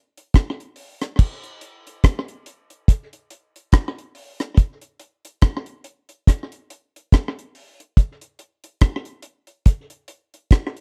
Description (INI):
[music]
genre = reggae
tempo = 71 BPM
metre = 4/4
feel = swing 57% on 16ths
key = none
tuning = none
[part]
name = deep reggae drum kit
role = drums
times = 0.2-10.8 s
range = crash cymbal, hi-hat, kick drum, rim click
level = -16 LUFS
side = equal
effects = slapback echo
[sound]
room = little or no reverb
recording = dry, close 1970s-style studio recording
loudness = -21 LUFS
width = mono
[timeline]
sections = 0.0-1.2 A section; 1.2-10.8 A section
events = none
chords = none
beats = 0.34 | 1.19 2.03 2.88 3.73 | 4.58 5.42 6.27 7.12 | 7.96 8.81 9.66 10.50